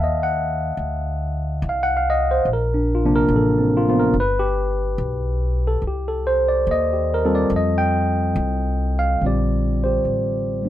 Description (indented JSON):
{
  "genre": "jazz ballad",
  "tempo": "72 BPM",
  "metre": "4/4",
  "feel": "swing 69% on 8ths",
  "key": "Bb major",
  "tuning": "A4 = 440 Hz",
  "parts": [
    { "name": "tine electric piano", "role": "accompaniment", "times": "0.0-10.7 s", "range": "C3 to A5", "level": "-20 LUFS", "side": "equal", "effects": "none" },
    { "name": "upright bass", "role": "bass", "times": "0.0-10.7 s", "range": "G1 to F2", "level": "-23 LUFS", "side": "equal", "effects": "none" }
  ],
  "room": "light reverb",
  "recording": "none",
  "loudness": "-18 LUFS",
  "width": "side -12 dB against mid",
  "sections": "0.0-9.2 A section; 9.2-10.7 B section",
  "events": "none",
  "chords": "0.0 F5; 2.5 Bbadd9; 4.2 G; 5.8 Cm; 7.5 Fadd9; 9.2 Bb69"
}